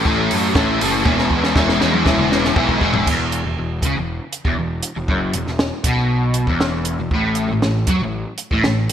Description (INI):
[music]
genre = indie rock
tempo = 118 BPM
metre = 4/4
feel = straight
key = E major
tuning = A4 = 439 Hz
[part]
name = crunchy overdriven guitar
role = riff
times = 0.0-8.9 s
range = E2 to A4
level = -18 LUFS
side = equal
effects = ensemble chorus
[part]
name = fuzz picked electric bass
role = bass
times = 0.0-8.9 s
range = E1 to F#2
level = -24 LUFS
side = equal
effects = overdrive
[part]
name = compact cocktail drum kit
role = drums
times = 0.1-8.9 s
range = crash cymbal, hi-hat, kick drum, snare drum, toms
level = -20 LUFS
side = equal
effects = none
[sound]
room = moderate lush hall reverb, RT60 1.7 s, small room ambience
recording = bright 1980s-style digital production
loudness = -16 LUFS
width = side -9 dB against mid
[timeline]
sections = 0.0-3.1 A section; 3.1-8.9 B section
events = drum fill 1.1-3.1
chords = 0.0 F#m; 1.1 E; 3.1 E5; 7.1 N.C.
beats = 0.06 0.56 | 1.06 1.56 2.06 2.57 | 3.07 3.57 4.08 4.58 | 5.09 5.60 6.11 6.61 | 7.12 7.63 8.14 8.65